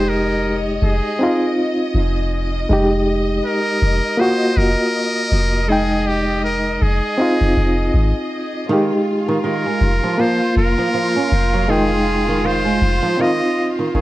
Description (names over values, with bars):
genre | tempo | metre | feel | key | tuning
trip hop | 80 BPM | 4/4 | swing 58% on 16ths | F minor | A4 = 441 Hz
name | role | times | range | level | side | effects
trumpet with metal mute | melody | 0.0-14.0 s | G4 to Eb5 | -22 LUFS | equal | tape echo
bright reed electric piano | accompaniment | 0.0-14.0 s | Ab3 to G5 | -19 LUFS | equal | fast tremolo
bright studio violin section | sustained chords | 0.0-14.0 s | F4 to Eb5 | -26 LUFS | left 1 dB | vintage 12-bit sampler grit
soft 808-style bass | bass | 0.0-14.0 s | F1 to Ab1 | -19 LUFS | equal | none
flamenco guitar | arpeggios | 8.7-14.0 s | Eb3 to Db4 | -23 LUFS | right 3 dB | ping-pong delay
room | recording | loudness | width
light reverb, small room ambience | worn, warbling old tape, cassette tape, warbly pitch drift | -15 LUFS | side -16 dB against mid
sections
0.0-14.0 A section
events
fade-out 12.7-14.0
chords
0.0 Fm9; 1.2 Fm7; 2.7 Fm9; 4.2 Gbmaj7/F; 5.7 Fm9; 7.2 Fm7; 8.7 Fm9; 10.2 Gbmaj7/F (rootless); 11.7 Fm9; 13.2 F7(no3)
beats
0.44 1.19 1.94 | 2.69 3.44 4.19 4.94 | 5.69 6.44 7.19 7.94 | 8.69 9.44 10.19 10.94 | 11.69 12.44 13.19 13.94